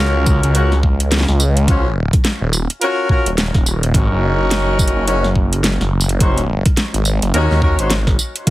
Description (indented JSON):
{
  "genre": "glitch hop",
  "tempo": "106 BPM",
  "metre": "4/4",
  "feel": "swing 60% on 16ths",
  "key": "unclear",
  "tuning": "A4 = 440 Hz",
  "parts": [
    { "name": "warm horn section", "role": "stabs", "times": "0.0-8.5 s", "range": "Db4 to C5", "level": "-20 LUFS", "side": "left 1 dB", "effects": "sidechain pumping, dub echo" },
    { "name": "phased detuned saw bass", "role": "bass", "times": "0.0-8.5 s", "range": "Eb1 to Eb2", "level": "-16 LUFS", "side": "equal", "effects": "phaser, tube saturation" },
    { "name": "dubstep drum kit", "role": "drums", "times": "0.3-8.5 s", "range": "hi-hat, snare drum, tambourine", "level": "-19 LUFS", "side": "equal", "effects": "small room ambience" },
    { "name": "electronic kick drum", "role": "drums", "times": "0.3-8.5 s", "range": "none", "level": "-15 LUFS", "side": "equal", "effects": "small room ambience" }
  ],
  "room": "little or no reverb",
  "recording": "heavily compressed radio sound",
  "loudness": "-13 LUFS",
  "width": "side -16 dB against mid",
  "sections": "0.0-8.5 A section",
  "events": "none",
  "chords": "0.0 Ebm7; 3.9 Ab7sus4",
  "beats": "0.55 1.11 | 1.68 2.25 2.81 3.38 | 3.94 4.51 5.08 5.64 | 6.21 6.77 7.34 7.91 | 8.47"
}